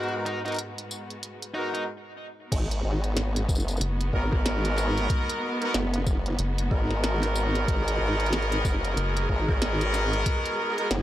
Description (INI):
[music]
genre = glitch hop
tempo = 93 BPM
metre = 4/4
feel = swing 60% on 16ths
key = G# minor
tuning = A4 = 440 Hz
[part]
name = bluesy overdriven lead guitar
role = melody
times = 0.0-1.8 s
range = D#4 to F#4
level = -36 LUFS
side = right 1 dB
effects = distortion, tape echo
[part]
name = clear studio string section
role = sustained chords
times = 0.0-11.0 s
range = G#2 to G#4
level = -34 LUFS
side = right 1 dB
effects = vintage 12-bit sampler grit, sidechain pumping
[part]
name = clear horn section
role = stabs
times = 0.0-10.9 s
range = G#2 to A#4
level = -29 LUFS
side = equal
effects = sidechain pumping, tape echo
[part]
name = glitchy drum kit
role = drums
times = 0.0-11.0 s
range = crash cymbal, hi-hat, snare drum, tambourine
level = -32 LUFS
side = equal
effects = none
[part]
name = deep dark ambient pad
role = texture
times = 0.1-1.9 s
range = B3 to F#5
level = -52 LUFS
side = right 2 dB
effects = none
[part]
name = formant-sweep wobble bass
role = bass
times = 2.5-11.0 s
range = F#1 to G#1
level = -27 LUFS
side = equal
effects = chorus, tube saturation
[part]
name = electronic kick drum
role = drums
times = 2.5-10.4 s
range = none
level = -27 LUFS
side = equal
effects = overdrive
[part]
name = rubbery square bass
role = bass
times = 3.8-9.3 s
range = F#1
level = -26 LUFS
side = equal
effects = none
[sound]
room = little or no reverb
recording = dry, gritty hardware recording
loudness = -24 LUFS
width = side -13 dB against mid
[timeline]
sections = 0.0-2.5 A section; 2.5-11.0 B section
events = break 1.9-2.5; drop 2.5-11.0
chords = 0.0 G#m7